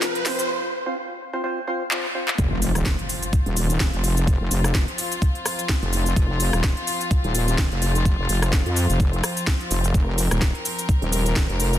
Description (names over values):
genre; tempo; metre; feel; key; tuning
bass house; 127 BPM; 4/4; swing 56% on 16ths; unclear; A4 = 441 Hz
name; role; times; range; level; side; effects
rich chamber string section; sustained chords; 0.0-11.8 s; C3 to C5; -29 LUFS; left 3 dB; sidechain pumping
percussive organ stab; stabs; 0.0-2.3 s; C4 to C5; -28 LUFS; right 1 dB; lush chorus, sidechain pumping, ping-pong delay
house drum kit; drums; 0.0-11.8 s; cabasa, handclaps, hi-hat, rim click, snare drum; -26 LUFS; equal; soft clipping on snare, high-pass filter on snare, studio reverb, high-pass filter on hats, high-pass filter on perc
riser and impact; sound effects; 0.0-4.3 s; none; -30 LUFS; equal; none
wobble bass; bass; 2.4-11.8 s; Eb1 to F2; -22 LUFS; equal; chorus, tube saturation, sidechain pumping
electronic kick drum; drums; 2.4-11.5 s; none; -21 LUFS; equal; studio reverb
room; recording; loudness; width
little or no reverb; dense, heavily limited modern master, high-pass filter; -20 LUFS; side -12 dB against mid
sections
0.0-2.4 A section; 2.4-11.8 B section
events
build-up 0.0-2.4; drum fill 0.0-0.5, 1.9-2.4; riser 0.0-0.5; break 0.5-2.4; drop 2.4-11.8; impact 2.4-4.3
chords
0.0 F5